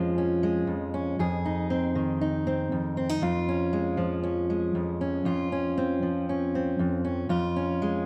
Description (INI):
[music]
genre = folk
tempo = 118 BPM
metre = 4/4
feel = straight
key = unclear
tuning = A4 = 439 Hz
[part]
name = fingerpicked steel-string acoustic guitar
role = solo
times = 0.0-8.1 s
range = F2 to Ab4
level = -28 LUFS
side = equal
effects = none
[sound]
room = wet recital hall reverb, RT60 1.4 s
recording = none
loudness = -28 LUFS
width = mono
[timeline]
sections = 0.0-8.1 A section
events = none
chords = 0.0 Db/F; 1.2 Ab/F; 3.2 Db/F; 5.3 Dbmaj7/F; 7.3 Db/F